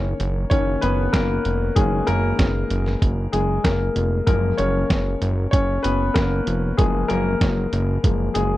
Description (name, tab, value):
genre	piano-driven pop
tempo	96 BPM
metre	4/4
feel	straight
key	F# major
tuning	A4 = 440 Hz
part	clear baby grand piano	accompaniment	0.0-8.6 s	D#3 to C#5	-22 LUFS	left 3 dB	none
part	fat analog bass	bass	0.0-8.6 s	E#1 to F#1	-22 LUFS	right 1 dB	none
part	lo-fi sampler-style drum kit	drums	0.2-8.5 s	hi-hat, kick drum, snare drum	-20 LUFS	right 1 dB	none
room	little or no reverb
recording	dry, close 1970s-style studio recording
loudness	-18 LUFS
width	side -16 dB against mid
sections	0.0-8.6 A section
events	grand piano solo 0.0-8.6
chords	0.0 Bmaj7; 4.3 F#maj7